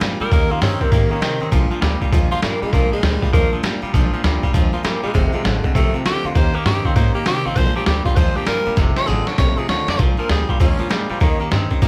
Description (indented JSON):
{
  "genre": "rockabilly",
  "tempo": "198 BPM",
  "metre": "4/4",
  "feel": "swing 64% on 8ths",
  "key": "Bb mixolydian",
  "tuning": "A4 = 440 Hz",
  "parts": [
    { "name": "picked steel-string acoustic guitar", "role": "accompaniment", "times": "0.0-11.9 s", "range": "F2 to G4", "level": "-30 LUFS", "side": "equal", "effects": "none" },
    { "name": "twangy electric guitar", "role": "riff", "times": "0.0-11.9 s", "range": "F2 to C4", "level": "-26 LUFS", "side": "equal", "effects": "none" },
    { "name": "upright bass", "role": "bass", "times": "0.0-11.9 s", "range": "F1 to C3", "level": "-24 LUFS", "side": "equal", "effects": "none" },
    { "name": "lo-fi sampler-style drum kit", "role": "drums", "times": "0.0-11.9 s", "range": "hi-hat, kick drum, snare drum", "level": "-22 LUFS", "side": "equal", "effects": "overdrive" },
    { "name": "raspy tenor saxophone", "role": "melody", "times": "0.2-11.4 s", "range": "Eb3 to D5", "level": "-25 LUFS", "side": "equal", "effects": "none" }
  ],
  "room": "light reverb",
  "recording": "band playing live in one room",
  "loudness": "-18 LUFS",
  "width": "mono",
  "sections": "0.0-10.0 A section; 10.0-11.9 A section",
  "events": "drum fill 8.8-10.0",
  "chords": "0.3 Eb7; 1.5 Bb7; 5.2 F7; 6.4 Eb7; 7.6 Bb7; 8.8 F7; 10.0 Bb7; 11.2 Eb7"
}